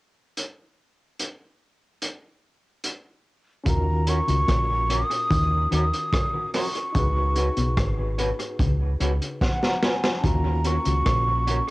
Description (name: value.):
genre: lovers rock reggae.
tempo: 73 BPM.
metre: 4/4.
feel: straight.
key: Eb minor.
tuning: A4 = 440 Hz.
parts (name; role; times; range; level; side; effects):
crunchy breakbeat drum kit; drums; 0.4-11.7 s; hi-hat, kick drum, rim click, snare drum; -26 LUFS; equal; analog delay.
overdriven tine electric piano; accompaniment; 3.6-11.7 s; Bb3 to Bb5; -33 LUFS; left 1 dB; fast tremolo, cassette tape, analog delay.
breathy mellow concert flute; melody; 3.7-11.7 s; Gb5 to Eb6; -26 LUFS; equal; cassette tape, tape echo.
mellow electric guitar; riff; 3.7-11.3 s; Ab2 to Eb3; -32 LUFS; left 2 dB; cassette tape, analog delay.
deep dub fingered electric bass; bass; 3.7-11.6 s; Ab1 to Eb2; -24 LUFS; equal; none.
electric guitar through a small old amp; stabs; 4.1-11.6 s; Db4 to Cb5; -33 LUFS; right 1 dB; cassette tape, analog delay.
room: light reverb, small room ambience.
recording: home recording on cassette.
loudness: -21 LUFS.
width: side -20 dB against mid.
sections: 0.4-3.7 A section; 3.7-10.2 B section; 10.2-11.7 C section.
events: tine electric piano fill 9.0-10.2; drum fill 9.4-10.2.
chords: 0.4 N.C.; 3.7 Ebm7; 6.9 Db7sus4; 10.2 Ebm7.